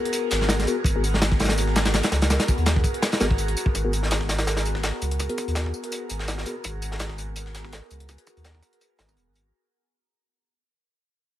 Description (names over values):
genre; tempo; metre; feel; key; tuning
drum and bass, jungle; 166 BPM; 4/4; swing 54% on 16ths; G# minor; A4 = 440 Hz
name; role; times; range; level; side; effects
airy breathy pad; sustained chords; 0.0-9.5 s; B3 to A#4; -31 LUFS; equal; chorus, phaser
mellow tine electric piano; stabs; 0.0-1.0, 3.2-6.5 s; B3 to A#4; -30 LUFS; left 2 dB; medium stereo tremolo, dub echo
breakbeat sampler-style drum kit; drums; 0.1-9.4 s; hi-hat, snare drum, tambourine; -33 LUFS; left 1 dB; overdrive, high-pass filter on perc, high-pass filter on snare, high-pass filter on hats, high-pass filter on room
crunchy breakbeat drum kit; drums; 0.1-9.4 s; hi-hat, kick drum, snare drum; -24 LUFS; equal; high-pass filter on kick, high-pass filter on hats, high-pass filter on snare, high-pass filter on room
saturated sub bass; bass; 0.3-9.5 s; D#1 to D#2; -26 LUFS; equal; none
room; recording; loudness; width
small room reverb; vinyl crackle; -21 LUFS; side -13 dB against mid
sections
0.0-3.7 A section; 3.7-9.5 B section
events
drop 0.0-3.7; fade-out 3.7-9.5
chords
0.0 G#m9